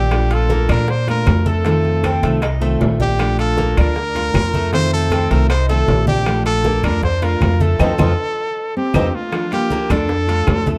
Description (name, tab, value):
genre	latin, Cuban son and guajira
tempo	156 BPM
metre	4/4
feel	straight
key	Bb major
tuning	A4 = 440 Hz
part	bright trumpet	melody	0.0-10.7 s	F4 to C5	-23 LUFS	equal	none
part	fingerpicked steel-string acoustic guitar	accompaniment	0.0-10.8 s	C3 to F4	-25 LUFS	equal	none
part	Cuban tres	arpeggios	0.0-10.8 s	A3 to F4	-28 LUFS	equal	none
part	upright bass	bass	0.0-10.8 s	Bb1 to Bb2	-20 LUFS	equal	none
part	bongos	percussion	0.1-10.8 s	none	-30 LUFS	equal	none
part	claves	percussion	0.1-10.7 s	none	-33 LUFS	equal	none
part	congas	percussion	0.1-10.8 s	none	-25 LUFS	equal	none
part	timbales	percussion	0.1-10.7 s	none	-30 LUFS	equal	none
part	nylon-string guitar	second line	8.8-10.8 s	A3 to D4	-27 LUFS	equal	none
room	light reverb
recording	dark, warm production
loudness	-17 LUFS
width	mono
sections	0.0-9.3 A section; 9.3-10.8 A section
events	band accent 7.8-9.3; drum fill 8.6-9.3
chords	0.1 Bbmaj7; 1.7 F7; 3.2 Bbmaj7; 4.7 F7; 6.3 Bbmaj7; 7.8 F7; 9.3 Bbmaj7